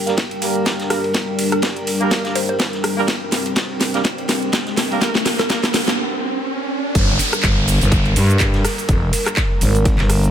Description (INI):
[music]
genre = bass house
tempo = 124 BPM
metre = 4/4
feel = swing 56% on 16ths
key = G minor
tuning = A4 = 439 Hz
[part]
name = dark analog pad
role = sustained chords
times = 0.0-10.3 s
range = G3 to Bb4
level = -25 LUFS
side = left 2 dB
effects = chorus, sidechain pumping
[part]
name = riser and downlifter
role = sound effects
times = 1.6-10.3 s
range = none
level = -26 LUFS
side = equal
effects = none
[part]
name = warbly tape-like pad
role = texture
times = 0.0-6.0 s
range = D4 to G5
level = -30 LUFS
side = right 1 dB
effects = chorus, built-in reverb, sidechain pumping
[part]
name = mellow horn section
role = stabs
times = 0.1-5.6 s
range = G3 to Bb4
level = -24 LUFS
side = right 4 dB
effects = sidechain pumping, low-pass filter, digital delay
[part]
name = house drum kit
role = drums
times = 0.1-10.3 s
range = cabasa, handclaps, hi-hat, rim click, snare drum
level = -21 LUFS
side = equal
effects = none
[part]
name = loose indie drum kit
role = drums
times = 0.1-10.2 s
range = ride cymbal, snare drum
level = -31 LUFS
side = equal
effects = sidechain pumping on cymbals, high-pass filter on cymbals, high-pass filter on snare, high-pass filter on room
[part]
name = electronic kick drum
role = drums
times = 0.2-10.0 s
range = none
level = -19 LUFS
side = equal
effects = high-pass filter on kick
[part]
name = mallet-like synth pluck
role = melody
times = 1.5-5.5 s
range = Bb4 to C5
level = -27 LUFS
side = left 1 dB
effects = chorus, phaser, digital delay
[part]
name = growling FM bass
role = bass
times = 7.0-10.3 s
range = F1 to G2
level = -16 LUFS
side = equal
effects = overdrive, sidechain pumping
[sound]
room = light reverb, small room reverb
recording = none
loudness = -16 LUFS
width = side -9 dB against mid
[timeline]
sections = 0.0-7.0 A section; 7.0-10.3 B section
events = build-up 0.0-7.0; drum fill 0.0-6.0; filter sweep on horn section 0.0-7.0; riser 1.6-7.0; break 6.0-7.0; drop 7.0-10.3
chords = 0.0 Gm